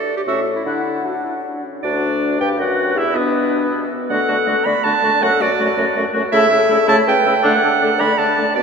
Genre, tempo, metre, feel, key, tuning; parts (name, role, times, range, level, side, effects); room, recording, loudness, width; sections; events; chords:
quick classical-period movement for wind quintet; 160 BPM; 3/4; rubato; B minor; A4 = 440 Hz
mellow hollow silver concert flute; melody; 0.0-8.6 s; D4 to F#5; -22 LUFS; left 7 dB
bright clarinet; accompaniment; 0.0-8.6 s; D4 to B5; -18 LUFS; right 5 dB
warm oboe; second line; 0.3-8.6 s; B3 to F#5; -23 LUFS; left 2 dB
warm French horn; accompaniment; 0.3-8.6 s; A3 to G4; -25 LUFS; left 2 dB
mellow bassoon; bass; 0.3-8.6 s; D2 to D3; -23 LUFS; right 1 dB
wet cathedral reverb, RT60 5.2 s; recorded in a church or concert hall; -14 LUFS; side -6 dB against mid
0.0-1.8 A section; 1.8-8.6 B section
0.3 A; 0.7 D; 1.8 Bm/D; 3.0 Bm; 4.1 D; 5.2 D/F#; 6.3 A/C#; 7.4 D